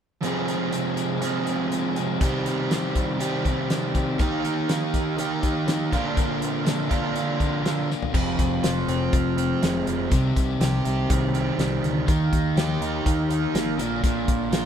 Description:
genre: classic rock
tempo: 122 BPM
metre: 4/4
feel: straight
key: F dorian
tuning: A4 = 440 Hz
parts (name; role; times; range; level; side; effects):
- crunchy overdriven guitar; riff; 0.2-14.7 s; F2 to Ab4; -28 LUFS; left 6 dB; none
- crunchy overdriven guitar; riff; 0.2-14.7 s; F2 to Ab4; -25 LUFS; right 4 dB; none
- damped 70s drum kit; drums; 0.2-14.6 s; crash cymbal, hi-hat, kick drum, snare drum, toms; -25 LUFS; left 1 dB; none
- fingered electric bass; bass; 8.1-14.7 s; F1 to Eb2; -28 LUFS; left 1 dB; none
room: moderate stone room reverb, RT60 1.1 s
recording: band playing live in one room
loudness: -21 LUFS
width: side -8 dB against mid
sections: 0.2-8.1 A section; 8.1-14.7 B section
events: drum fill 7.9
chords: 0.2 Fm; 2.2 Cm; 4.2 Eb; 5.9 Bb; 8.1 Fm; 10.1 Cm; 12.1 Eb; 13.8 Bb

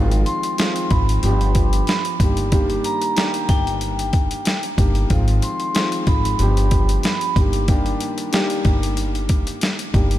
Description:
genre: hip hop, boom-bap hip-hop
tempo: 93 BPM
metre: 4/4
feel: swing 55% on 16ths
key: Eb major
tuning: A4 = 442 Hz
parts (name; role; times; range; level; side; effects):
- dark grand piano; accompaniment; 0.0-10.2 s; Eb3 to G4; -24 LUFS; left 1 dB; cassette tape, high-pass filter, low-pass filter
- upright bass; bass; 0.0-10.2 s; G1 to Ab1; -20 LUFS; equal; none
- boom bap sampler-style drum kit; drums; 0.1-10.2 s; hi-hat, kick drum, snare drum; -20 LUFS; equal; none
- vibraphone with medium hard mallets; melody; 0.3-7.3 s; G5 to C6; -26 LUFS; right 2 dB; high-pass filter, low-pass filter, ping-pong delay
room: light reverb, studio reverb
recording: none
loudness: -17 LUFS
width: side -14 dB against mid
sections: 0.0-10.2 A section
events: none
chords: 0.0 Ab6; 1.2 G7; 2.2 Ebmaj7/G; 5.1 Ab6; 6.4 G7; 7.4 Ebmaj7/G

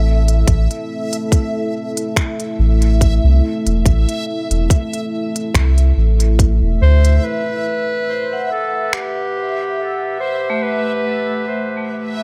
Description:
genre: ambient dub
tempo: 71 BPM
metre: 4/4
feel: swing 53% on 16ths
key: A dorian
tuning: A4 = 439 Hz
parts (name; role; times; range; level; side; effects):
- deep dark ambient pad; sustained chords; 0.0-12.2 s; A3 to A5; -27 LUFS; equal; chorus, built-in reverb
- soft dub sub bass; bass; 0.0-7.2 s; E1 to D2; -15 LUFS; equal; none
- backwards swelling texture; texture; 0.0-12.2 s; E5; -30 LUFS; equal; built-in reverb
- organic electronic drum kit; drums; 0.3-9.1 s; finger snaps, hi-hat; -24 LUFS; equal; none
- electronic kick drum; drums; 0.5-6.6 s; none; -17 LUFS; equal; none
- bright clarinet; melody; 6.8-12.1 s; G4 to C5; -23 LUFS; equal; dub echo
- vibraphone with hard mallets; arpeggios; 8.3-12.2 s; A3 to F#5; -27 LUFS; equal; low-pass filter, dub echo
room: little or no reverb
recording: echo-heavy mix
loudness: -17 LUFS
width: mono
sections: 0.0-7.2 A section; 7.2-12.2 B section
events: filter sweep on ambient pad 7.2-12.2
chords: 0.0 Am; 7.2 Am7

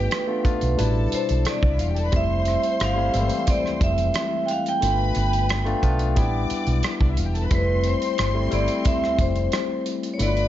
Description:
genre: lush 1970s-style soul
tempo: 89 BPM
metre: 4/4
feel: straight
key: F lydian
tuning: A4 = 444 Hz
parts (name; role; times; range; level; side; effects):
- vibraphone with medium hard mallets; melody; 0.0-10.5 s; B4 to G5; -25 LUFS; right 2 dB; none
- rich studio string section; second line; 0.0-10.5 s; C4 to D6; -33 LUFS; left 2 dB; none
- barky tine electric piano; accompaniment; 0.0-10.5 s; B2 to F4; -27 LUFS; left 4 dB; medium stereo tremolo
- hollow-body short-scale fingered electric bass; bass; 0.0-10.5 s; E1 to C2; -23 LUFS; equal; none
- modern studio drum kit; drums; 0.1-10.5 s; hi-hat, kick drum, rim click; -26 LUFS; right 1 dB; none
room: light reverb, small room reverb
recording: nothing above 7.6 kHz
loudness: -20 LUFS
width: side -12 dB against mid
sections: 0.0-10.5 A section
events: none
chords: 0.0 G7; 0.8 A7sus4; 2.1 Fmaj9; 4.8 G7; 6.2 A7sus4; 7.5 Fmaj9

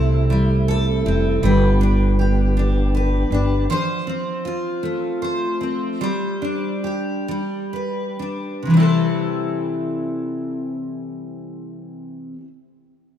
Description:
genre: six-eight pop ballad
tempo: 41-53 BPM (dotted quarters)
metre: 6/8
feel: straight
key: C major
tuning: A4 = 441 Hz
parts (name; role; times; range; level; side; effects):
- picked steel-string acoustic guitar; accompaniment; 0.0-12.5 s; C3 to C5; -20 LUFS; equal; double-tracked left and right
- tonewheel organ; sustained chords; 0.0-3.7 s; C3 to G4; -26 LUFS; right 1 dB; overdrive, chorus vibrato, slow rotary speaker
- upright bass; bass; 0.0-3.7 s; F1 to C2; -19 LUFS; equal; none
room: moderate lush hall reverb, RT60 2.7 s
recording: rough home demo mix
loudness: -18 LUFS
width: side -10 dB against mid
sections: 0.0-8.7 A section; 8.7-11.6 B section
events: slowing down 3.7-8.7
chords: 0.0 C6; 1.4 G; 3.7 F; 6.0 Gsus4; 7.3 G; 8.7 C6

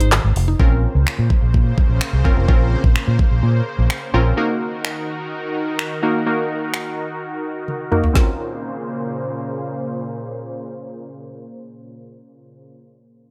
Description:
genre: dance-pop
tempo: 127 BPM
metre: 4/4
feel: straight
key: Bb minor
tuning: A4 = 439 Hz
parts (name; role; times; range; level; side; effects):
- glassy wavetable pluck; accompaniment; 0.0-12.8 s; Eb3 to Bb4; -24 LUFS; equal; chorus, sidechain pumping, low-pass filter
- mallet-like synth pluck; arpeggios; 0.0-0.6 s; Eb3 to Eb4; -30 LUFS; equal; chorus, sidechain pumping, delay
- vintage muted fingered electric bass; bass; 0.0-4.3 s; F1 to Bb2; -19 LUFS; equal; sidechain pumping
- smooth R&B drum kit; drums; 0.0-8.3 s; finger snaps, handclaps, hi-hat, kick drum, snare drum, toms; -19 LUFS; equal; none
- supersaw pad; sustained chords; 0.6-12.7 s; Bb2 to C5; -30 LUFS; equal; sidechain pumping, low-pass filter
room: light reverb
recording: none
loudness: -19 LUFS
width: mono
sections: 0.6-8.2 A section; 8.2-11.9 B section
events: filter sweep 0.6-8.2; drum fill 7.7-8.2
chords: 0.0 Ab; 0.6 Bbmadd9; 4.4 Ebm; 8.2 Bbmadd9

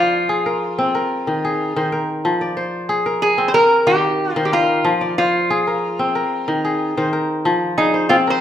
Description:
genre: west african traditional, West African string and xylophone music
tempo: 92 BPM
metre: 4/4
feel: straight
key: F dorian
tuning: A4 = 440 Hz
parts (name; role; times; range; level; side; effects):
- lap resonator guitar; melody; 0.0-8.4 s; Eb4 to C5; -17 LUFS; equal; none
- kora; arpeggios; 0.0-8.4 s; Eb3 to D5; -18 LUFS; left 1 dB; none
room: moderate recital hall reverb, RT60 1.2 s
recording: minimal, uncompressed stereo recording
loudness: -16 LUFS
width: side -10 dB against mid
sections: 0.0-7.4 A section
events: none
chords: 0.0 Fm; 0.9 Eb5; 2.2 Fm; 3.5 Eb; 4.8 Fm; 6.1 Eb5; 7.4 Fm

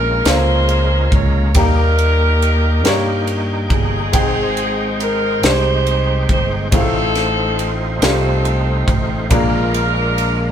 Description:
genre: slow gospel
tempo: 46 BPM (dotted quarters)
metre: 6/8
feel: straight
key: Ab major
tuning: A4 = 440 Hz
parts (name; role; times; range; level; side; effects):
- mellow saxophone section; melody; 0.0-10.5 s; C4 to Db5; -20 LUFS; equal; none
- clear grand piano; accompaniment; 0.0-10.5 s; Ab2 to G5; -23 LUFS; left 2 dB; none
- overdriven tonewheel organ; sustained chords; 0.0-10.5 s; Ab3 to G5; -24 LUFS; right 2 dB; slow rotary speaker, chorus vibrato
- fingered electric bass; bass; 0.0-10.5 s; G1 to G2; -18 LUFS; equal; none
- crisp fusion drum kit; drums; 0.3-10.4 s; kick drum, ride cymbal, snare drum; -20 LUFS; equal; none
room: moderate small room reverb, RT60 0.6 s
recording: band playing live in one room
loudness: -13 LUFS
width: side -9 dB against mid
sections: 0.0-10.5 A section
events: none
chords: 0.0 Bbm7; 1.6 Eb; 4.1 Abmaj7; 6.7 F7/A; 9.3 Bb7

